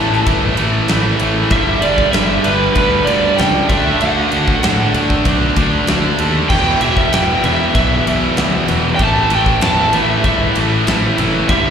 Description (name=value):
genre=hard rock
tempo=96 BPM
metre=4/4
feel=straight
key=unclear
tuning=A4 = 440 Hz
part: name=lead guitar through a small cranked amp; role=melody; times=0.0-11.7 s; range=B4 to A5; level=-18 LUFS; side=right 1 dB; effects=overdrive, slapback echo, tape echo
part: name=overdriven electric guitar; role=riff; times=0.0-11.7 s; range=E2 to D4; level=-22 LUFS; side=equal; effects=spring reverb, slapback echo
part: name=scooped high-gain guitar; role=riff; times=0.0-11.7 s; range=E2 to D4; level=-20 LUFS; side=left 11 dB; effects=distortion, slapback echo
part: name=tight distorted guitar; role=riff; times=0.0-11.7 s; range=E2 to D4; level=-19 LUFS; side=right 10 dB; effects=distortion, slapback echo
part: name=fuzz fingered electric bass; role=bass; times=0.0-11.7 s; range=E1 to A2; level=-19 LUFS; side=left 1 dB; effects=overdrive
part: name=huge arena drum kit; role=drums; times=0.1-11.6 s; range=crash cymbal, kick drum, ride cymbal, snare drum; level=-19 LUFS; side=equal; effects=none
room=light reverb, small room ambience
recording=live gig heard through the venue's PA, recital hall reverb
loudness=-12 LUFS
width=side -7 dB against mid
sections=0.0-11.7 A section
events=none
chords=0.0 A5; 1.5 G5; 3.7 D; 6.5 E5; 9.0 A5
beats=0.28 0.90 | 1.52 2.15 2.77 3.40 | 4.02 4.64 5.26 5.89 | 6.51 7.13 7.76 8.38 | 9.01 9.63 10.25 10.88 | 11.50